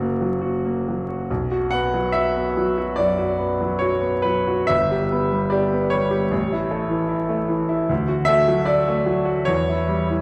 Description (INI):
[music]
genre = classical, romantic character piece for solo piano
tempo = 66-77 BPM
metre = 4/4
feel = rubato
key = B minor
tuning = A4 = 440 Hz
[part]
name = bright grand piano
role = solo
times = 0.0-10.2 s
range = F#1 to F#5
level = -21 LUFS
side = equal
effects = none
[sound]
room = wet recital hall reverb, RT60 1.7 s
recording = recorded in a church or concert hall, vinyl crackle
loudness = -21 LUFS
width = mono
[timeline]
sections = 0.0-10.2 A section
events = none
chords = 0.0 F#; 1.3 Bm; 4.7 G; 6.3 A; 7.9 D; 9.5 C#dim/E